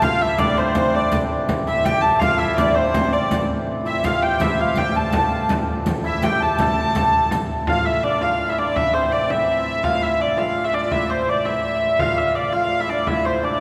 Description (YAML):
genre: medieval dance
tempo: 110 BPM (dotted quarters)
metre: 6/8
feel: straight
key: A minor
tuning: A4 = 439 Hz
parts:
  - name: rich hurdy-gurdy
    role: melody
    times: 0.0-13.6 s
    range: C5 to A5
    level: -23 LUFS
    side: equal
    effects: none
  - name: hammered dulcimer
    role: second line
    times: 0.0-13.6 s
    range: C4 to A4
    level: -27 LUFS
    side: equal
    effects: none
  - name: mellow hollow tenor recorder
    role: second line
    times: 0.0-7.3, 12.0-13.6 s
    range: C5 to A5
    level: -31 LUFS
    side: equal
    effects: none
  - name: chamber organ, cornet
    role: drone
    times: 0.0-13.6 s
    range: A2 to E3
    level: -33 LUFS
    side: equal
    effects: none
  - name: frame drum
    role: percussion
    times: 0.0-13.2 s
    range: none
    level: -28 LUFS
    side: equal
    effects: none
  - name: riq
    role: percussion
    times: 0.0-7.5 s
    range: none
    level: -31 LUFS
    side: equal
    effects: none
room: wet church reverb, RT60 3.4 s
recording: none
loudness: -20 LUFS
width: mono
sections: 0.0-7.7 A section; 7.7-13.6 B section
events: none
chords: none